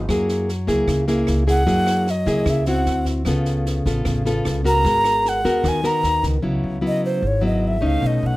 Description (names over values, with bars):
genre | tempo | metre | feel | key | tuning
bossa nova | 152 BPM | 4/4 | straight | G# minor | A4 = 440 Hz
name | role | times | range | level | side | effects
nylon-string guitar | accompaniment | 0.0-8.4 s | G#2 to A#4 | -20 LUFS | left 1 dB | none
upright bass | bass | 0.0-8.4 s | G#1 to F#2 | -23 LUFS | equal | none
compact cocktail drum kit | drums | 0.1-6.3 s | kick drum, rim click, snare drum | -28 LUFS | equal | none
breathy bright alto ocarina | melody | 1.5-8.4 s | B#4 to A#5 | -21 LUFS | right 1 dB | none
room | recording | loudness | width
light reverb | none | -17 LUFS | side -18 dB against mid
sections
0.0-6.4 A section; 6.4-8.4 A section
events
ocarina solo 0.0-8.4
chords
0.1 F#9; 2.9 D9; 3.3 C#aug7; 4.8 G#m9; 6.4 C#m11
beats
| 0.09 0.49 0.88 1.28 | 1.68 2.07 2.47 2.86 | 3.26 3.66 4.05 4.45 | 4.84 5.24 5.64 6.03 | 6.43 6.83 7.22 7.62 | 8.01